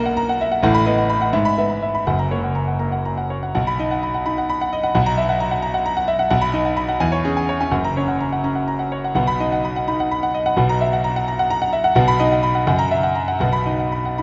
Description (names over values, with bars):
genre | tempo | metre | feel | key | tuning
classical, virtuoso piano study | 77-88 BPM (dotted quarters) | 6/8 | rubato | B major | A4 = 440 Hz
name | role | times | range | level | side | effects
clear concert grand piano | solo | 0.0-14.2 s | F#1 to B5 | -20 LUFS | equal | none
room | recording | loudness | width
wet concert hall reverb, RT60 2.3 s | nothing above 7.6 kHz | -19 LUFS | mono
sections
0.0-3.6 A section; 3.6-14.2 B section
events
none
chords
0.0 F#7/B; 0.6 B7/A; 1.3 E/G#; 2.1 F#; 3.6 B; 5.0 F#7/B; 6.3 B; 7.0 C#m/E; 7.7 F#; 9.2 B; 10.6 F#7/B; 12.0 B; 12.7 F#7; 13.4 B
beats
| 0.64 1.33 | 2.07 2.81 | 3.56 4.26 | 4.95 5.63 | 6.31 7.01 | 7.73 8.45 | 9.18 9.89 | 10.59 11.28 | 11.97 12.67 | 13.42 14.19